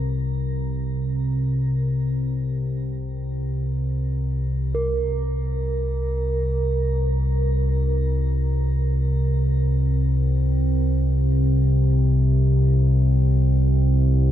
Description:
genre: dark ambient drone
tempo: free time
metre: none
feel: none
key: unclear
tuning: A4 = 440 Hz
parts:
  - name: deep rumbling drone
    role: drone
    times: 0.0-14.3 s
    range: C2 to C3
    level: -19 LUFS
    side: equal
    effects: built-in reverb
  - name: bronze singing bowl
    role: texture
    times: 0.0-14.3 s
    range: Bb4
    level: -32 LUFS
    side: right 3 dB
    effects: shimmer reverb
room: light reverb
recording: dark, warm production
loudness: -19 LUFS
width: side -11 dB against mid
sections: 0.0-4.8 A section; 4.8-14.3 B section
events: none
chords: 0.0 Bbsus2/C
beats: free time

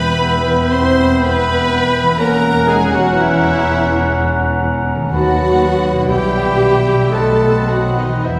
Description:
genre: classical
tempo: 61 BPM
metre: 3/4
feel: rubato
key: E minor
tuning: A4 = 440 Hz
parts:
  - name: rich chamber violin section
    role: melody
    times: 0.0-8.4 s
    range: D#5 to C6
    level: -30 LUFS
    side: equal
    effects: none
  - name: clear clarinet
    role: second line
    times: 0.0-8.4 s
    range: D#5 to F#5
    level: -27 LUFS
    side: equal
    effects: none
  - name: hollow concert flute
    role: second line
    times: 0.0-8.4 s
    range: A#5 to B5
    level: -26 LUFS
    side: equal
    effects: none
  - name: warm chamber violin section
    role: second line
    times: 0.0-8.4 s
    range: D#5 to C6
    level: -27 LUFS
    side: equal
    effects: none
  - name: warm oboe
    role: second line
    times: 0.0-8.4 s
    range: F#5 to A5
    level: -28 LUFS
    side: equal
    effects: none
  - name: mellow bassoon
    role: accompaniment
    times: 0.0-8.4 s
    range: B3 to C#4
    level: -25 LUFS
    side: equal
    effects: none
  - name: rich chamber viola section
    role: accompaniment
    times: 0.0-8.4 s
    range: D#4 to C5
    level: -20 LUFS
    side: equal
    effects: none
  - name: mellow French horn section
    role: sustained chords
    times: 0.0-8.4 s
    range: D#3 to C4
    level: -22 LUFS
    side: equal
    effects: none
  - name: concert harp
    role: arpeggios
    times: 0.0-8.4 s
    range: B2 to G4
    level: -25 LUFS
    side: equal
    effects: none
  - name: rich chamber cello section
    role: bass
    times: 0.0-8.4 s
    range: D#2 to B2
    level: -25 LUFS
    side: equal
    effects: none
  - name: rich chamber double bass section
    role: bass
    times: 0.0-8.4 s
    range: E1 to D#2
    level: -25 LUFS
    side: equal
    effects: none
  - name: timpani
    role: percussion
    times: 0.0-0.7 s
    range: E2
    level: -32 LUFS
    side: equal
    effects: none
room: wet scoring stage reverb, RT60 1.6 s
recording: heard from further back in the room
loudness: -14 LUFS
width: mono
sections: 0.0-8.4 A section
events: none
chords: 0.0 Em; 2.2 F#7/E; 5.1 B7/D#; 6.1 Em/B; 7.1 B7b9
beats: 0.23 1.22 | 2.19 3.17 4.16 | 5.13 6.10 7.13 | 8.25

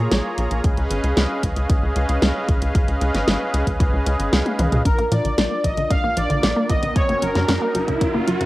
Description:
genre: synthwave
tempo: 114 BPM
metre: 4/4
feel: straight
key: unclear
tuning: A4 = 440 Hz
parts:
  - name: brassy analog pad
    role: sustained chords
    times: 0.0-8.5 s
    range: Bb3 to Bb5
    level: -25 LUFS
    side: equal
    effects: chorus, sidechain pumping
  - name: tight sequencer bass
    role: bass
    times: 0.0-8.5 s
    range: Gb1 to Bb2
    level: -23 LUFS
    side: equal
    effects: sidechain pumping
  - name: pop drum kit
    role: drums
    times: 0.1-8.5 s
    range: hi-hat, snare drum, toms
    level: -23 LUFS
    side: equal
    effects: studio ambience, cassette tape
  - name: electronic kick drum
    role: drums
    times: 0.6-8.1 s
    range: none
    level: -20 LUFS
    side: equal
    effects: studio ambience, cassette tape
  - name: soft supersaw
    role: melody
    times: 4.9-8.2 s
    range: Bb4 to F5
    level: -22 LUFS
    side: equal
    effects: phaser, cassette tape, analog delay
  - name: wide unison pluck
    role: arpeggios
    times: 4.9-8.5 s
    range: Db3 to D4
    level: -26 LUFS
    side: left 1 dB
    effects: analog delay
  - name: riser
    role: sound effects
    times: 6.4-8.5 s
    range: none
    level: -27 LUFS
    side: right 2 dB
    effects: none
room: light reverb, digital ambience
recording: home recording on cassette, high-pass filter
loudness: -17 LUFS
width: side -18 dB against mid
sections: 0.0-4.9 A section; 4.9-8.5 B section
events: drum fill 4.5-4.9; riser 6.4-8.5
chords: 0.0 Bbm7; 0.6 Db7; 4.9 Bb; 7.0 Gb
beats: 0.12 | 0.64 1.17 1.70 2.22 | 2.75 3.27 3.80 4.33 | 4.85 5.38 5.91 6.43 | 6.96 7.49 8.01

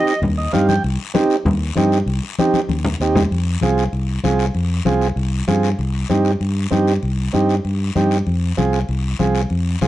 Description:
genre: latin, cumbia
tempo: 194 BPM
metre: 4/4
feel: straight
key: F minor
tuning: A4 = 440 Hz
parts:
  - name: combo organ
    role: accompaniment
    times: 0.0-9.9 s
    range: C4 to G5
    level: -19 LUFS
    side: right 3 dB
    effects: none
  - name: guiro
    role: percussion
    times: 0.1-9.9 s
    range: none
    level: -32 LUFS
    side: left 7 dB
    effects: none
  - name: fingered electric bass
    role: bass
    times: 0.2-9.9 s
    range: C2 to G2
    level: -19 LUFS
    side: left 1 dB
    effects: none
  - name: congas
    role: percussion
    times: 0.2-9.9 s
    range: none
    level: -22 LUFS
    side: left 3 dB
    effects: none
room: moderate studio reverb, RT60 0.7 s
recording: worn, warbling old tape, cassette tape, warbly pitch drift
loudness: -16 LUFS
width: side -14 dB against mid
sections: 0.0-3.3 A section; 3.3-9.9 B section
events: transistor combo organ fill 0.2-0.8; drum fill 2.4-3.3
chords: 0.0 Cm; 3.3 Fm; 5.8 Cm; 8.3 Fm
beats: 0.22 0.53 | 0.84 1.15 1.46 1.77 | 2.08 2.38 2.69 3.00 | 3.31 3.62 3.93 4.24 | 4.55 4.86 5.17 5.48 | 5.79 6.10 6.41 6.72 | 7.03 7.34 7.65 7.96 | 8.27 8.57 8.88 9.19 | 9.50 9.81

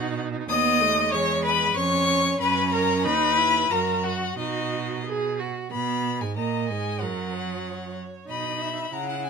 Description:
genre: quick classical-period movement for string quartet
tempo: 94 BPM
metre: 2/4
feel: straight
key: B major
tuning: A4 = 438 Hz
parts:
  - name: clear violin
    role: melody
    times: 0.0-9.3 s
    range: D#5 to D#6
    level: -26 LUFS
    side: left 8 dB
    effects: none
  - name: clear violin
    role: second line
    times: 0.0-9.3 s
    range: D#4 to F#5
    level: -27 LUFS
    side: left 1 dB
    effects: none
  - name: rich viola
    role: accompaniment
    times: 0.0-9.3 s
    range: F#3 to G#4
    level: -29 LUFS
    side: right 5 dB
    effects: none
  - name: clear cello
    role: bass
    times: 0.0-9.3 s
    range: D#2 to C#3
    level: -30 LUFS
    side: right 5 dB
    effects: none
room: moderate studio reverb, RT60 0.6 s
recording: minimal, uncompressed stereo recording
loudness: -22 LUFS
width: side -5 dB against mid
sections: 0.0-5.7 A section; 5.7-9.3 A section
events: none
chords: 0.5 B7/D#; 1.1 E; 1.8 C#/E#; 2.4 F#; 3.1 B/D#; 3.7 F#; 4.4 B; 5.7 G#m; 6.4 G#5; 7.0 F#5; 8.3 B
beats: | 0.50 1.13 | 1.77 2.41 | 3.05 3.71 | 4.38 5.05 | 5.71 6.36 | 7.00 7.64 | 8.29 8.93

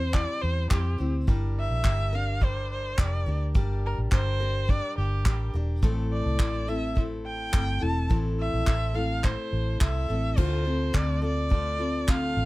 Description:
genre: acoustic pop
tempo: 106 BPM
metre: 4/4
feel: straight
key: unclear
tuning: A4 = 441 Hz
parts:
  - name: rich erhu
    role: melody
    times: 0.0-12.5 s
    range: G4 to A5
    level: -32 LUFS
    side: right 1 dB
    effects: none
  - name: picked steel-string acoustic guitar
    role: accompaniment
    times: 0.0-12.5 s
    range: A2 to C5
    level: -32 LUFS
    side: left 2 dB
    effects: none
  - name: vintage muted fingered electric bass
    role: bass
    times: 0.0-12.5 s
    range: E1 to F2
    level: -28 LUFS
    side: equal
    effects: none
  - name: unplugged drum kit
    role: drums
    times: 0.1-12.2 s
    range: crash cymbal, handclaps, kick drum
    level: -24 LUFS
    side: equal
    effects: none
room: little or no reverb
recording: none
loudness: -24 LUFS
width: side -19 dB against mid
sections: 0.0-10.4 A section; 10.4-12.5 B section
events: none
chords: 0.0 C; 1.3 Gm; 5.8 Am; 10.4 F6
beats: 0.14 0.71 | 1.28 1.85 2.42 2.99 | 3.55 4.12 4.69 5.26 | 5.83 6.40 6.97 7.54 | 8.10 8.67 9.24 9.81 | 10.38 10.95 11.52 12.08

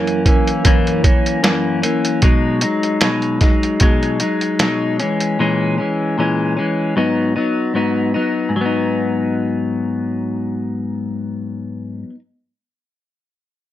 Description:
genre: indie pop, bedroom pop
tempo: 76 BPM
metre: 4/4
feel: swing 55% on 16ths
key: G# minor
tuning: A4 = 440 Hz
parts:
  - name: clean electric guitar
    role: accompaniment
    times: 0.0-12.2 s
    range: F#2 to D#4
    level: -17 LUFS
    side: left 2 dB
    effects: lush chorus, warbly pitch drift
  - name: mellow tine electric piano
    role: accompaniment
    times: 0.0-2.2 s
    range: F#3 to A#4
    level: -22 LUFS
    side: right 7 dB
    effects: medium stereo tremolo, cassette tape
  - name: lo-fi sampler-style drum kit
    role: drums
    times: 0.1-5.4 s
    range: hi-hat, kick drum, snare drum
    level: -15 LUFS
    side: right 1 dB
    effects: none
room: light reverb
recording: none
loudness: -15 LUFS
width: side -13 dB against mid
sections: 0.0-8.5 A section; 8.5-11.7 B section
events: none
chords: 0.0 F#7; 2.2 B6; 5.0 A#m7b5; 7.0 G#m7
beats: 0.65 1.44 | 2.23 3.02 3.81 4.60 | 5.39 6.17 6.96 7.75 | 8.54 9.33 10.12 10.91

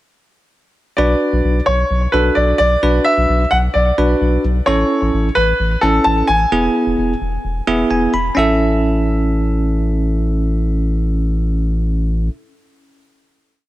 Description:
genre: synth-pop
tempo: 130 BPM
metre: 4/4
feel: straight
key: A major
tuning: A4 = 440 Hz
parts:
  - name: bright concert grand piano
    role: melody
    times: 1.0-12.3 s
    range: A4 to A5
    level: -17 LUFS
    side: equal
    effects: digital delay
  - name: bell-like tine electric piano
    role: accompaniment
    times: 1.0-12.3 s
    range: B3 to B5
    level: -18 LUFS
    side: right 1 dB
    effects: fast stereo tremolo
  - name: round analog bass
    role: bass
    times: 1.0-12.3 s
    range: E1 to B1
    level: -17 LUFS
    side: equal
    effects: none
room: light reverb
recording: none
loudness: -13 LUFS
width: side -16 dB against mid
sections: 1.0-8.4 pre-chorus; 8.4-12.1 final chord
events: tine electric piano fill 7.4-8.4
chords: 1.0 Bm; 4.7 Aadd9; 6.5 E; 8.4 A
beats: | 0.98 1.44 1.91 2.37 | 2.83 3.29 3.75 4.21 | 4.67 5.14 5.60 6.06 | 6.52 6.98 7.44 7.91 | 8.37 8.83 9.29 9.75 | 10.21 10.68 11.14 11.60

